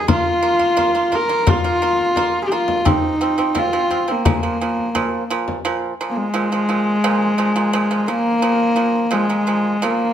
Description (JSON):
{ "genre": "mongolian traditional, Mongolian folk", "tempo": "86 BPM", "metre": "4/4", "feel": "straight", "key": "unclear", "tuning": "A4 = 440 Hz", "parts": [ { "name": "rich horsehead fiddle", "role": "melody", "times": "0.0-10.1 s", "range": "Ab3 to Bb4", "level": "-17 LUFS", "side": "left 1 dB", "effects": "none" }, { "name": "pipa", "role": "arpeggios", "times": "0.1-10.1 s", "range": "Bb2 to F4", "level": "-22 LUFS", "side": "right 4 dB", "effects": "none" }, { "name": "frame drum", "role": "percussion", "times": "0.1-5.6 s", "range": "none", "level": "-21 LUFS", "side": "left 3 dB", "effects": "none" } ], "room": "moderate studio reverb, RT60 0.9 s", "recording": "none", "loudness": "-16 LUFS", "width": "side -10 dB against mid", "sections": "0.0-5.6 A section; 5.6-10.1 B section", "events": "none", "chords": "0.1 Bb5; 2.9 F5; 4.3 Bb5" }